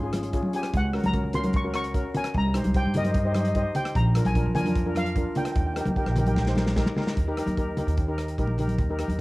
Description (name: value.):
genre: calypso.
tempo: 149 BPM.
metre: 4/4.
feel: straight.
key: unclear.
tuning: A4 = 440 Hz.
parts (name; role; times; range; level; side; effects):
steel pan; melody; 0.0-6.5 s; Eb5 to Db6; -31 LUFS; left 1 dB; cassette tape.
steel pan; accompaniment; 0.0-9.2 s; Db4 to C5; -30 LUFS; equal; none.
upright bass; bass; 0.0-9.2 s; Ab1 to G2; -26 LUFS; equal; none.
natural country drum kit; drums; 0.1-9.2 s; hi-hat, kick drum, rim click, snare drum; -29 LUFS; equal; none.
congas; percussion; 0.1-9.2 s; none; -30 LUFS; equal; none.
room: light reverb.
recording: home recording on cassette.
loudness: -23 LUFS.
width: side -20 dB against mid.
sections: 0.0-7.2 A section; 7.2-9.2 B section.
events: drum fill 6.4-7.2.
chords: 0.0 Dbmaj7; 0.7 Gb/Db; 2.3 Cm7; 4.0 Bb7; 5.6 Eb.